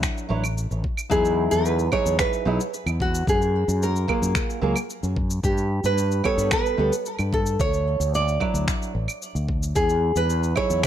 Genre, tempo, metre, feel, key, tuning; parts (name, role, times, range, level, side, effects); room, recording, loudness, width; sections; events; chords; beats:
sunset chillout; 111 BPM; 4/4; straight; E major; A4 = 440 Hz
nylon-string guitar; melody; 0.0-10.9 s; E4 to D5; -24 LUFS; right 1 dB; digital delay
nylon-string guitar; accompaniment; 0.0-10.9 s; F#3 to C#5; -27 LUFS; right 1 dB; auto-pan, vintage 12-bit sampler grit, digital delay
electronic finger snaps, cabasa and claves; drums; 0.0-10.9 s; -29 LUFS; equal
electronic kick drum; drums; 0.0-10.9 s; -27 LUFS; equal
fretless electric bass; bass; 0.3-10.8 s; A1 to G2; -24 LUFS; equal
light reverb, studio ambience; -20 LUFS; side -10 dB against mid
0.0-1.1 A section; 1.1-10.9 B section
filter sweep on nylon-string guitar 0.0-1.1
0.0 Dmaj9; 1.1 Emaj9; 3.3 F#maj9; 5.4 Gmaj9; 7.6 Dmaj9; 9.8 Emaj9
0.03 0.57 | 1.11 1.65 2.19 2.73 | 3.27 3.81 4.35 4.89 | 5.43 5.98 6.52 7.06 | 7.60 8.14 8.68 9.22 | 9.76 10.30 10.84